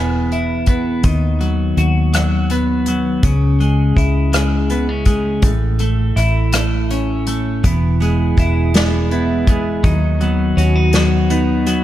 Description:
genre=six-eight pop ballad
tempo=55 BPM (dotted quarters)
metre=6/8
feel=straight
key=unclear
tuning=A4 = 440 Hz
part: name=twelve-string electric guitar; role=accompaniment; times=0.0-11.8 s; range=A2 to G#4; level=-18 LUFS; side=left 1 dB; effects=none
part: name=vintage muted fingered electric bass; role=bass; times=0.0-11.8 s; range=E1 to D#2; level=-17 LUFS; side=equal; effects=none
part: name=unplugged drum kit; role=drums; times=0.3-11.8 s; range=hi-hat, kick drum, rim click, snare drum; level=-18 LUFS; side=equal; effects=none
part: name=fingerpicked steel-string acoustic guitar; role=arpeggios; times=7.6-11.8 s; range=F#3 to G#4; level=-23 LUFS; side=right 5 dB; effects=none
room=light reverb, studio ambience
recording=dark, warm production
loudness=-13 LUFS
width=side -13 dB against mid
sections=0.0-11.8 A section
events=none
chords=0.0 E; 1.0 B/D#; 3.2 C#m; 5.4 A; 7.6 E; 9.8 B/D#

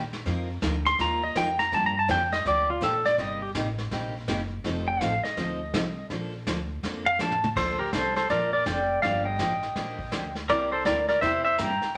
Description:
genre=country, western swing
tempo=164 BPM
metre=4/4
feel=swing 63% on 8ths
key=Bb major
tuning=A4 = 440 Hz
part: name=upright bass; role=bass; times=0.0-12.0 s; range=F1 to A2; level=-36 LUFS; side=equal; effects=none
part: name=vintage brush drum kit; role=drums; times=0.1-12.0 s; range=brushed snare drum, crash cymbal, hi-hat, kick drum, snare drum, toms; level=-37 LUFS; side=equal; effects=none
part: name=picked steel-string acoustic guitar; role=accompaniment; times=0.3-11.7 s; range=C3 to Bb4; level=-36 LUFS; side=equal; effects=none
part: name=pedal steel guitar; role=melody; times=0.9-12.0 s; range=F4 to C6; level=-27 LUFS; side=equal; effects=none
room=wet studio reverb, RT60 0.9 s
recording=none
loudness=-27 LUFS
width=mono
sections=0.0-7.6 A section; 7.6-12.0 B section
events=pedal steel guitar solo 0.0-7.6; drum fill 7.2-7.6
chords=0.3 F7sus4; 1.7 Gm7; 3.2 Cm7/G; 4.6 F7; 6.1 Bbmaj7; 9.0 Gm7; 10.5 C7

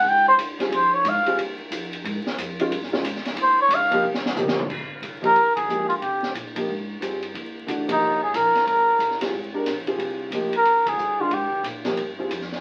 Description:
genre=modal jazz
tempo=181 BPM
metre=4/4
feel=swing 63% on 8ths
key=Db lydian, Ab lydian from 4.7 s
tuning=A4 = 440 Hz
part: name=trumpet with cup mute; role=melody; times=0.0-1.4, 3.4-11.7 s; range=Eb4 to G5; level=-20 LUFS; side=equal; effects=none
part: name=upright bass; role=bass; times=0.0-12.6 s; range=G1 to C3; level=-41 LUFS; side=equal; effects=none
part: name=open jazz drum kit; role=drums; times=0.4-12.6 s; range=crash cymbal, hi-hat, kick drum, ride cymbal, snare drum, toms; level=-33 LUFS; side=equal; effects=none
part: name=warm upright piano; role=accompaniment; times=0.6-12.3 s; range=Eb3 to Bb4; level=-28 LUFS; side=equal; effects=none
room=wet studio reverb, RT60 0.5 s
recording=very old 78 rpm record, vinyl crackle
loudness=-23 LUFS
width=mono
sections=0.0-4.7 A section; 4.7-12.6 B section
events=muted trumpet solo 0.0-4.7; drum fill 4.0-4.7; band accent 5.5, 7.8, 10.8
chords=0.0 Dbadd9; 3.4 Eb13; 4.7 Abmaj9

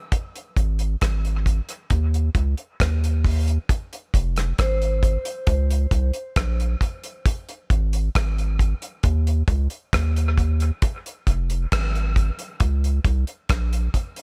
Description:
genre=dub reggae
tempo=67 BPM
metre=4/4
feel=straight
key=F minor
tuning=A4 = 440 Hz
part: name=damped 70s drum kit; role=drums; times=0.1-14.2 s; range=hi-hat, kick drum, rim click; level=-25 LUFS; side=equal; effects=none
part: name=soft dub sub bass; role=bass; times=0.6-13.9 s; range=F1 to Eb2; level=-23 LUFS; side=equal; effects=none
part: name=vibraphone with medium mallets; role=melody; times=4.6-5.4 s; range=C5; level=-32 LUFS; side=equal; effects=dub echo
room=little or no reverb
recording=none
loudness=-23 LUFS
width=mono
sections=0.0-3.7 A section; 3.7-14.2 B section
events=none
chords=0.1 N.C.; 3.7 Fm; 5.5 Bbmadd9; 7.3 N.C.; 10.8 Fm; 12.6 Bbmadd9

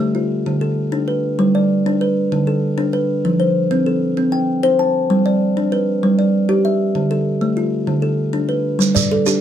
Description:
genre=southern african traditional, mbira-style interlocking cycle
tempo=129 BPM (dotted quarters)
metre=12/8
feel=straight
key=G mixolydian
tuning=A4 = 440 Hz
part: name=kalimba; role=arpeggios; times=0.0-9.4 s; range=D3 to A5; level=-15 LUFS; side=equal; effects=none
part: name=shekere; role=percussion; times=8.8-9.4 s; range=none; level=-19 LUFS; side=right 8 dB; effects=none
part: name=kalimba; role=arpeggios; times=9.0-9.4 s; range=G3 to A4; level=-19 LUFS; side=right 3 dB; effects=none
room=moderate small room ambience, RT60 0.5 s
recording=none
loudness=-15 LUFS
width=side -10 dB against mid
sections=0.0-8.8 A section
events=none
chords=0.0 Dm; 1.4 G; 2.3 D5; 3.2 F; 4.2 C5; 5.1 G; 7.0 Dm; 8.8 G

